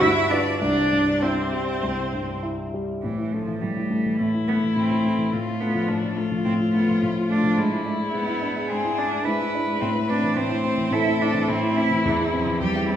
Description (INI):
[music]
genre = quick classical-period movement for piano quartet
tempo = 98-109 BPM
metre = 4/4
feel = rubato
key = C major, A minor from 3.0 s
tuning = A4 = 440 Hz
[part]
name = rich violin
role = melody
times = 0.0-13.0 s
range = D4 to E5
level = -28 LUFS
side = left 4 dB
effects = none
[part]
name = clear cello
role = second line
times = 0.0-13.0 s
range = E3 to E4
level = -26 LUFS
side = right 4 dB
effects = none
[part]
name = rich viola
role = accompaniment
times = 0.0-2.4 s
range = C4 to E4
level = -23 LUFS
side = right 1 dB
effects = none
[part]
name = warm concert grand piano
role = accompaniment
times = 0.0-13.0 s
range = C2 to B4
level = -23 LUFS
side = left 1 dB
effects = none
[sound]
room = wet recital hall reverb, RT60 1.8 s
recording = heard from further back in the room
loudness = -20 LUFS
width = side -10 dB against mid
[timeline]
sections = 0.0-3.0 A section; 3.0-13.0 B section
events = none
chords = 0.0 G7; 0.6 C; 3.0 Am; 5.3 Bm7b5/A; 7.6 E7/G#; 9.8 Am; 12.0 C/E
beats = 0.01 | 0.60 1.22 1.82 2.43 | 3.03 3.61 4.19 4.76 | 5.33 5.89 6.46 7.02 | 7.58 8.14 8.70 9.26 | 9.81 10.37 10.92 11.49 | 12.05 12.61